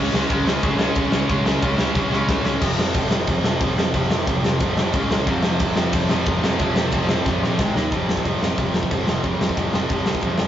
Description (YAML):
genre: punk rock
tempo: 181 BPM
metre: 4/4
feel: straight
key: F minor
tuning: A4 = 442 Hz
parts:
  - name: cranked stack guitar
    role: riff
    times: 0.0-10.5 s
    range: F2 to Eb4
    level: -22 LUFS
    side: right 1 dB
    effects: overdrive
  - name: high-gain distorted guitar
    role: riff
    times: 0.0-2.4, 5.3-7.6 s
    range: F2 to Db4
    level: -26 LUFS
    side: left 1 dB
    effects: distortion
  - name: growling picked electric bass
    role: bass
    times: 0.0-10.5 s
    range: F1 to Eb2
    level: -29 LUFS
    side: equal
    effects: overdrive
  - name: big rock drum kit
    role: drums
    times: 0.1-10.5 s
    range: crash cymbal, kick drum, ride cymbal, snare drum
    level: -21 LUFS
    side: equal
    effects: none
room: moderate studio reverb, RT60 0.6 s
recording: rough rehearsal-room recording, nothing above 7.6 kHz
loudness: -18 LUFS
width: side -11 dB against mid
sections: 0.0-2.6 A section; 2.6-7.9 B section; 7.9-10.5 C section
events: drum fill 2.0-2.6, 7.3-7.9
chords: 0.0 Db5; 2.6 F5; 4.9 Db5; 5.3 F5; 7.6 Ab5; 7.8 Eb5; 7.9 F5